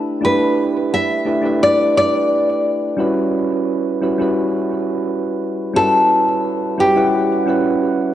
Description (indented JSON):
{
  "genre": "chillout",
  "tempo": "87 BPM",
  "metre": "4/4",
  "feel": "straight",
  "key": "E dorian",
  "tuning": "A4 = 440 Hz",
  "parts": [
    { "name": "soft electric-piano-like synth keys", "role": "accompaniment", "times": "0.0-8.1 s", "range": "G3 to F#5", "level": "-17 LUFS", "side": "right 2 dB", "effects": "chorus, auto-pan, vintage 12-bit sampler grit, cassette tape" },
    { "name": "nylon-string guitar", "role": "melody", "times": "0.2-7.8 s", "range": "G4 to E5", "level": "-17 LUFS", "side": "left 1 dB", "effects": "cassette tape, analog delay" }
  ],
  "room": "moderate lush hall reverb, RT60 2.3 s",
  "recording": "home recording on cassette",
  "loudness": "-15 LUFS",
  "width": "side -12 dB against mid",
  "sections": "0.0-8.1 A section",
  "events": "none",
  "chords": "0.0 A9sus4; 3.0 Em69",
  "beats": "| 0.23 0.92 1.61 2.30 | 2.99 3.68 4.37 5.06 | 5.75 6.44 7.13 7.82"
}